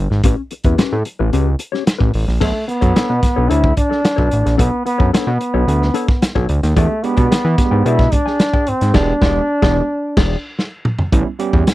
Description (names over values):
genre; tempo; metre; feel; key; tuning
funk; 110 BPM; 4/4; straight; unclear; A4 = 436 Hz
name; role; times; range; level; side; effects
fat analog bass; bass; 0.0-11.7 s; E1 to E3; -16 LUFS; equal; none
mellow electric guitar; accompaniment; 0.1-10.4 s; C#4 to G#5; -23 LUFS; left 9 dB; wide subtle chorus
crunchy breakbeat drum kit; drums; 0.1-11.7 s; crash cymbal, hi-hat, kick drum, snare drum, toms; -16 LUFS; equal; none
warm trombone; melody; 2.4-10.6 s; A3 to E4; -18 LUFS; equal; none
overdriven tine electric piano; stabs; 6.8-11.7 s; G3 to G4; -21 LUFS; right 6 dB; none
room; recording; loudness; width
little or no reverb; dry, close 1970s-style studio recording; -13 LUFS; side -16 dB against mid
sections
0.0-2.4 A section; 2.4-11.1 B section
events
band accent 8.9-11.1; tine electric piano fill 9.5-11.1; drum fill 10.6-11.1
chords
0.0 A9; 2.4 Bm9; 6.8 E7#9; 11.1 A9